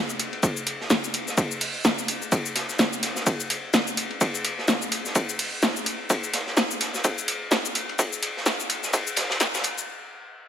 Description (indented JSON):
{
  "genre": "techno",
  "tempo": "127 BPM",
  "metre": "4/4",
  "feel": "swing 58% on 16ths",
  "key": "none",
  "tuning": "none",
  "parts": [
    { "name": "punchy analog drum machine", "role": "drums", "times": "0.1-9.9 s", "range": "cabasa, hi-hat, snare drum", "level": "-25 LUFS", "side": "equal", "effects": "overdrive" },
    { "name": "raw garage drum kit", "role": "drums", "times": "0.2-9.8 s", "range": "hi-hat, ride cymbal, snare drum", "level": "-28 LUFS", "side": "left 1 dB", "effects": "high-pass filter on cymbals, high-pass filter on hats, high-pass filter on snare, high-pass filter on room" },
    { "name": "electronic kick drum", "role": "drums", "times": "0.4-9.5 s", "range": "none", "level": "-26 LUFS", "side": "right 1 dB", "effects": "overdrive, high-pass filter on kick" }
  ],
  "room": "moderate lush hall reverb, RT60 1.7 s",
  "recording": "high-pass filter",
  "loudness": "-22 LUFS",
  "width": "side -9 dB against mid",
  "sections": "0.0-10.5 A section",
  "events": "build-up 0.0-10.5; stop 9.9-10.5",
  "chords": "none"
}